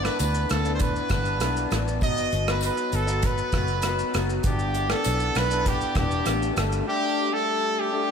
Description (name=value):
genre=indie pop, bedroom pop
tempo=99 BPM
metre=4/4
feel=straight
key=G major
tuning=A4 = 439 Hz
part: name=brilliant trumpet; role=melody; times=0.0-8.1 s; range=G4 to D#5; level=-26 LUFS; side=right 2 dB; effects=wide subtle chorus, analog delay
part: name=electric guitar through a small old amp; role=accompaniment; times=0.0-8.1 s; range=G2 to D#4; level=-29 LUFS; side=left 6 dB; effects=analog chorus, warbly pitch drift, slapback echo
part: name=vintage muted fingered electric bass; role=bass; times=0.0-6.8 s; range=E1 to D2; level=-27 LUFS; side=equal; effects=none
part: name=unplugged drum kit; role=drums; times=0.0-6.9 s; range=hi-hat, kick drum, rim click, shaker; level=-28 LUFS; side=right 1 dB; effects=none
part: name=tambourine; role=percussion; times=0.2-6.7 s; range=none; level=-43 LUFS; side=left 14 dB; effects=none
room=moderate lush hall reverb, RT60 1.8 s, small room reverb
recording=big arena sound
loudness=-22 LUFS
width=side -6 dB against mid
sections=0.0-8.1 A section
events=none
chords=0.0 G6; 2.0 B/G; 4.4 Em7/G; 6.6 Dsus4/G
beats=0.20 0.81 1.41 | 2.02 2.62 3.23 3.83 | 4.44 5.05 5.65 6.26 | 6.87 7.47 8.08